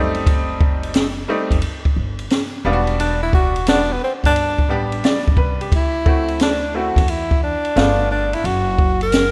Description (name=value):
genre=hip hop, jazz-hop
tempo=88 BPM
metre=4/4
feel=swing 66% on 16ths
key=E minor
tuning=A4 = 441 Hz
part: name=bright upright piano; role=accompaniment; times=0.0-8.4 s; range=G3 to D5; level=-26 LUFS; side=equal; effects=none
part: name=upright bass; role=bass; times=0.0-9.3 s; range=E1 to E2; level=-27 LUFS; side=equal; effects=none
part: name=open jazz drum kit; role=drums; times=0.1-9.3 s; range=hi-hat, kick drum, ride cymbal, snare drum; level=-21 LUFS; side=equal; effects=vintage 12-bit sampler grit
part: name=warm tenor saxophone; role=melody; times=3.0-9.3 s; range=B3 to A#4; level=-22 LUFS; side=equal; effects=slapback echo
room=light reverb, studio reverb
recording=rough home demo mix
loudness=-18 LUFS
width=mono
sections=0.0-9.3 A section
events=none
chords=0.0 F#dim7; 2.6 Em9; 5.7 D9; 7.8 G9; 8.4 F#